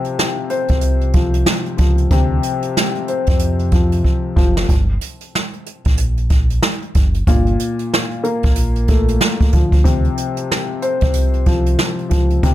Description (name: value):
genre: hip hop, boom-bap hip-hop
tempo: 93 BPM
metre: 4/4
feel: swing 61% on 16ths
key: G minor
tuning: A4 = 440 Hz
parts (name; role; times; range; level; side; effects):
- dark upright piano; accompaniment; 0.0-12.5 s; Bb2 to C5; -20 LUFS; left 3 dB; cassette tape, high-pass filter, low-pass filter
- jazz brush drum kit; drums; 0.0-12.5 s; hi-hat, kick drum, snare drum; -16 LUFS; right 1 dB; none
- deep dub fingered electric bass; bass; 0.7-12.5 s; F#1 to F2; -18 LUFS; equal; none
room: little or no reverb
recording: none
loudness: -14 LUFS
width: side -14 dB against mid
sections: 0.0-12.5 A section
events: drum fill 4.0-4.7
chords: 0.0 Dm7 (rootless); 4.7 Gmadd9 (rootless); 9.5 Dm7